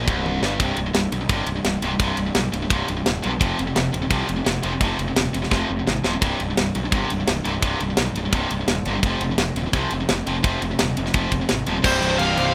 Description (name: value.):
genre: heavy metal.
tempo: 171 BPM.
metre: 4/4.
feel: straight.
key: C minor.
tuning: A4 = 440 Hz.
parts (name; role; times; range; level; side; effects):
distorted electric guitar; riff; 0.0-12.5 s; C2 to F3; -32 LUFS; equal; overdrive.
tight distorted guitar; riff; 0.0-12.5 s; C2 to F3; -28 LUFS; equal; distortion.
fuzz picked electric bass; bass; 0.0-12.5 s; C1 to C2; -29 LUFS; equal; overdrive.
tight metal drum kit; drums; 0.1-12.5 s; crash cymbal, kick drum, ride cymbal, snare drum, toms; -26 LUFS; equal; none.
high-gain lead guitar; melody; 11.8-12.5 s; C5 to F5; -24 LUFS; equal; distortion.
warm symphonic string section; sustained chords; 11.8-12.5 s; Eb3 to C5; -33 LUFS; equal; none.
high-gain distorted guitar; riff; 11.8-12.5 s; C2 to C3; -27 LUFS; equal; distortion.
room: light reverb.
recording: rough home demo mix.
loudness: -22 LUFS.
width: mono.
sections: 0.6-11.9 A section.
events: drum fill 0.3-0.6, 5.5-6.2.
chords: 0.0 C5; 3.4 F5; 6.2 C5; 9.0 F5; 11.9 Cm.